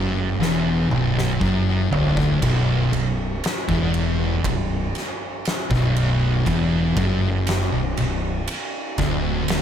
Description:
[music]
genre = stoner and doom metal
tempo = 59 BPM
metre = 4/4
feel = straight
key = B minor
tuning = A4 = 440 Hz
[part]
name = thick fuzz guitar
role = riff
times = 0.0-9.6 s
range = B1 to F#2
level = -23 LUFS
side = left 6 dB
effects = distortion
[part]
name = thick fuzz guitar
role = riff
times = 0.0-9.6 s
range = B1 to F#2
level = -23 LUFS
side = right 5 dB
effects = distortion
[part]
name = fuzz fingered electric bass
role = bass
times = 0.0-9.6 s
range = B0 to F#1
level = -26 LUFS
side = equal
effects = overdrive
[part]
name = oversized low-tuned drum kit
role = drums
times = 0.4-9.6 s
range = kick drum, ride cymbal, snare drum, splash cymbal, toms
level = -26 LUFS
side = right 1 dB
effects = none
[sound]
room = light reverb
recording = none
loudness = -19 LUFS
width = side -9 dB against mid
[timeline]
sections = 0.0-9.6 A section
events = drum fill 0.4-2.4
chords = 0.0 Bm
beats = 0.40 1.41 | 2.42 3.43 4.45 5.46 | 6.47 7.47 8.48 9.49

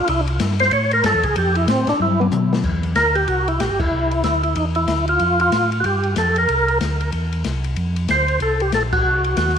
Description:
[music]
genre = soul jazz organ trio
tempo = 187 BPM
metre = 4/4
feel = swing 62% on 8ths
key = C mixolydian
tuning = A4 = 440 Hz
[part]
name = percussive tonewheel organ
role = melody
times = 0.0-9.6 s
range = B3 to C#5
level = -18 LUFS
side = right 1 dB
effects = slow rotary speaker, overdrive, chorus vibrato, tape echo
[part]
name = mellow tonewheel organ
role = bass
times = 0.0-9.6 s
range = E1 to B2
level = -21 LUFS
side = equal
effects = chorus vibrato, slow rotary speaker
[part]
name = open jazz drum kit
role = drums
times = 0.1-9.6 s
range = crash cymbal, hi-hat, kick drum, ride cymbal, snare drum, toms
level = -25 LUFS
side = left 5 dB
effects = none
[sound]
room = light reverb, studio ambience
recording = 1960s-style stereo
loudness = -16 LUFS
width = side -8 dB against mid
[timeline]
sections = 0.0-2.6 A section; 2.6-9.6 B section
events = tonewheel organ solo 0.0-2.6; drum fill 2.0-2.6; band accent 3.8, 8.9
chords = 0.1 C5; 0.7 A7; 1.4 Fmaj13; 2.0 G; 2.6 Cadd9; 5.2 Fadd9; 6.5 C9; 7.8 F5; 9.0 Cdim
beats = | 0.09 0.40 0.72 1.04 | 1.36 1.68 2.00 2.32 | 2.64 2.96 3.28 3.60 | 3.92 4.24 4.56 4.88 | 5.20 5.52 5.84 6.16 | 6.48 6.80 7.12 7.44 | 7.76 8.09 8.41 8.73 | 9.05 9.37

